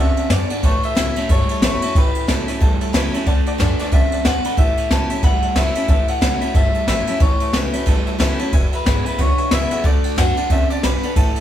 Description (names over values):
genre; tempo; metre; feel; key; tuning
rockabilly; 182 BPM; 4/4; swing 59% on 8ths; A mixolydian; A4 = 439 Hz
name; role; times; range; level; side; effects
electric guitar through a small old amp; melody; 0.0-11.4 s; A4 to A5; -23 LUFS; left 2 dB; warbly pitch drift
picked steel-string acoustic guitar; accompaniment; 0.0-11.4 s; E2 to F#4; -27 LUFS; left 1 dB; none
tack piano; accompaniment; 0.0-11.4 s; B4 to B5; -31 LUFS; left 2 dB; none
electric guitar through a small old amp; riff; 0.0-11.4 s; E2 to C4; -26 LUFS; right 2 dB; none
upright bass; bass; 0.0-11.4 s; E1 to F#2; -24 LUFS; equal; none
jazz brush drum kit; drums; 0.2-11.4 s; kick drum, ride cymbal, snare drum; -17 LUFS; equal; none
room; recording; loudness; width
light reverb; band playing live in one room; -15 LUFS; side -11 dB against mid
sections
0.0-11.4 A section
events
none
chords
0.0 D; 0.6 A; 3.3 D; 4.6 A; 8.5 E; 9.8 D